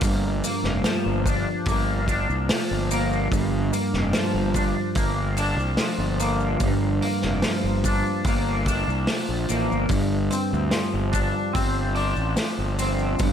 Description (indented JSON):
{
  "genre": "psychedelic rock",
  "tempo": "73 BPM",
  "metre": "4/4",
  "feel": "straight",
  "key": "G minor",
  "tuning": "A4 = 440 Hz",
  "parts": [
    { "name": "twangy electric guitar", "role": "riff", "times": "0.0-13.3 s", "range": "G2 to D4", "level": "-24 LUFS", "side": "equal", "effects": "rotary speaker, double-tracked left and right" },
    { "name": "fuzz fingered electric bass", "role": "bass", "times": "0.0-13.3 s", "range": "F1 to D2", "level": "-26 LUFS", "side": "equal", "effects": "overdrive" },
    { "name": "vintage drum kit", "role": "drums", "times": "0.0-13.3 s", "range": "hi-hat, kick drum, snare drum", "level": "-27 LUFS", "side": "equal", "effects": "none" },
    { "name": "maracas", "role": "percussion", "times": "0.0-13.3 s", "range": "none", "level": "-36 LUFS", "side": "left 17 dB", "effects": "none" }
  ],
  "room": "light reverb",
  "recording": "none",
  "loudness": "-21 LUFS",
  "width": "side -8 dB against mid",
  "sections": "0.0-13.3 A section",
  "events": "none",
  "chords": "0.0 Gm7; 9.9 F5/G"
}